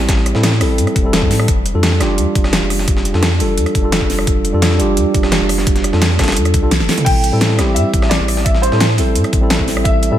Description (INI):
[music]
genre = liquid drum and bass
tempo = 172 BPM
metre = 4/4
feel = straight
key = unclear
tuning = A4 = 440 Hz
[part]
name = mellow tine electric piano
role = accompaniment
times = 0.0-10.2 s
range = G3 to A4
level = -18 LUFS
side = right 1 dB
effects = diffuse ambient delay
[part]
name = warm sub bass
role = bass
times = 0.0-10.2 s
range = E1 to A2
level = -17 LUFS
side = equal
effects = none
[part]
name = breakbeat sampler-style drum kit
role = drums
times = 0.0-10.1 s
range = hi-hat, snare drum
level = -23 LUFS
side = equal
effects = high-pass filter on hats, high-pass filter on snare
[part]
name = electronic kick drum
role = drums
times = 0.1-9.9 s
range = none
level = -16 LUFS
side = equal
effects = none
[part]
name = pop drum kit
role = drums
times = 0.1-10.1 s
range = crash cymbal, hi-hat, rim click, snare drum, toms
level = -20 LUFS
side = equal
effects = none
[part]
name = warm grand piano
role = melody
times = 7.0-10.2 s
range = C5 to G5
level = -20 LUFS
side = equal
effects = analog chorus, ping-pong delay
[sound]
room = light reverb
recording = none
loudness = -12 LUFS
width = side -11 dB against mid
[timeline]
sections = 0.0-10.2 A section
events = kick drops out 6.7-7.1; drum fill 6.8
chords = 0.0 Am7; 1.5 F69; 7.1 Am7